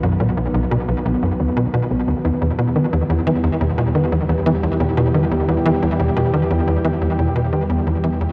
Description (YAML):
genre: ambient, sequencer-driven space music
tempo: 88 BPM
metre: 4/4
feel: straight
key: unclear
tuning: A4 = 439 Hz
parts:
  - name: lush unison pad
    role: sustained chords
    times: 0.0-8.3 s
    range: D#3 to G4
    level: -24 LUFS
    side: equal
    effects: chorus
  - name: soft round pluck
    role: arpeggios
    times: 0.0-8.3 s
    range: B2 to B4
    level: -29 LUFS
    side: equal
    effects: chorus, tape echo
  - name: tight sequencer bass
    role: riff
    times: 0.0-8.3 s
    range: B1 to E3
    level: -21 LUFS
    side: equal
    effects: analog chorus, tape echo
  - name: warm sub bass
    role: bass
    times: 0.0-8.3 s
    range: B1 to E2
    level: -29 LUFS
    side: equal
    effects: none
room: moderate huge ambient reverb, RT60 7.4 s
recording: worn, warbling old tape, cassette tape, warbly pitch drift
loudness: -19 LUFS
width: mono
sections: 0.0-8.3 A section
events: fade-in on synth arpeggio sound 0.0-8.3; fade-out 5.9-8.3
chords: 0.0 B; 2.2 Em